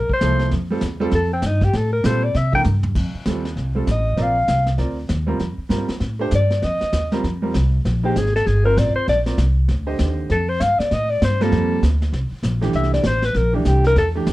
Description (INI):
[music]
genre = jazz, small-group swing and bop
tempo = 196 BPM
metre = 4/4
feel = swing 62% on 8ths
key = F mixolydian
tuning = A4 = 440 Hz
[part]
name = breathy alto saxophone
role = melody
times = 0.0-14.1 s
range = C4 to G5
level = -20 LUFS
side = left 1 dB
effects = none
[part]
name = upright bass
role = bass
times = 0.0-14.3 s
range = G1 to C3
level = -20 LUFS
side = equal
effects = none
[part]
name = vintage brush drum kit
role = drums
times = 0.1-14.3 s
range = brushed snare drum, crash cymbal, hi-hat, kick drum, snare drum, toms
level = -27 LUFS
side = equal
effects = none
[part]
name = clear baby grand piano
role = accompaniment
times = 0.2-14.3 s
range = D3 to Eb5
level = -24 LUFS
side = right 3 dB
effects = none
[sound]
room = light reverb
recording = dark, warm production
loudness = -17 LUFS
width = side -17 dB against mid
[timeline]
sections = 0.0-3.0 A section; 3.0-14.3 A section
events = alto saxophone solo 0.0-14.3; drum fill 2.7-3.0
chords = 0.0 C7; 0.5 F; 2.4 C7; 3.0 F7; 4.2 Bb; 5.4 F7; 7.9 Bb7; 10.3 F; 12.7 C7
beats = 0.21 | 0.52 0.82 1.13 1.43 | 1.74 2.04 2.35 2.65 | 2.96 3.27 3.57 3.88 | 4.18 4.49 4.79 5.10 | 5.41 5.71 6.02 6.32 | 6.63 6.93 7.24 7.55 | 7.85 8.16 8.46 8.77 | 9.07 9.38 9.69 9.99 | 10.30 10.60 10.91 11.21 | 11.52 11.82 12.13 12.44 | 12.74 13.05 13.35 13.66 | 13.96 14.27